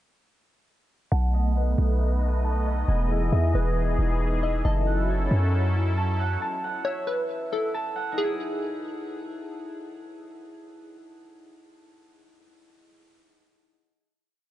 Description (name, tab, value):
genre	hip hop, atmospheric cloud-rap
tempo	136 BPM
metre	4/4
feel	half-time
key	E major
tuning	A4 = 439 Hz
part	glassy wavetable pluck	melody	1.1-9.5 s	G#4 to F#5	-32 LUFS	left 1 dB	chorus, low-pass filter, digital delay
part	sweeping resonant pad	sustained chords	1.1-6.4 s	E3 to D#5	-31 LUFS	equal	chorus, low-pass filter
part	concert harp	arpeggios	1.1-11.4 s	B3 to A5	-33 LUFS	equal	low-pass filter, digital delay
part	warm 808-style bass	bass	1.1-6.4 s	E1 to F#2	-23 LUFS	equal	none
part	wind-like tuned noise texture	texture	1.5-4.6 s	E3 to B4	-40 LUFS	equal	built-in reverb
room	little or no reverb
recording	dark, warm production, nothing above 10.4 kHz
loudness	-23 LUFS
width	side -14 dB against mid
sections	1.1-8.2 breakdown; 8.2-11.7 final chord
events	filter sweep 1.1-8.2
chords	1.1 B7; 2.9 Emaj7; 4.6 F#m7; 8.2 Emaj7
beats	| 1.12 1.56 2.00 2.44 | 2.88 3.33 3.77 4.21 | 4.65 5.09 5.53 5.97 | 6.41 6.86 7.30 7.74 | 8.18 8.62 9.06 9.50 | 9.94 10.38 10.83 11.27